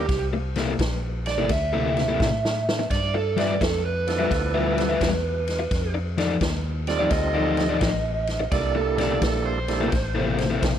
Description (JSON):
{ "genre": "electric blues shuffle", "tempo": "86 BPM", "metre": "4/4", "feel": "swing 66% on 8ths", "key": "C mixolydian", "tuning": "A4 = 440 Hz", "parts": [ { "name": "overdriven slide guitar", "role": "second line", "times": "0.0-10.8 s", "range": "G4 to E5", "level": "-27 LUFS", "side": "right 3 dB", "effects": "slapback echo" }, { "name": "tonewheel organ", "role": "accompaniment", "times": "0.0-9.9 s", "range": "F3 to A4", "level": "-30 LUFS", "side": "right 6 dB", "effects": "slow rotary speaker, overdrive" }, { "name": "vintage muted fingered electric bass", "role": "bass", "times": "0.0-10.8 s", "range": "A1 to A2", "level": "-28 LUFS", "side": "equal", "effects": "none" }, { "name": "vintage drum kit", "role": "drums", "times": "0.1-10.8 s", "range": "kick drum, ride cymbal, snare drum", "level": "-28 LUFS", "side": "equal", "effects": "none" }, { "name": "overdriven semi-hollow guitar", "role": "riff", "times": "0.3-10.7 s", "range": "C3 to E5", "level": "-26 LUFS", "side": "left 4 dB", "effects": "none" } ], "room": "light reverb", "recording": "none", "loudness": "-21 LUFS", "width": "side -9 dB against mid", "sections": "0.0-10.8 A section", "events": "electric slide guitar solo 0.0-10.8; drum fill 2.2-2.9", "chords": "0.1 C13; 2.9 G13; 5.7 F13; 8.5 C13" }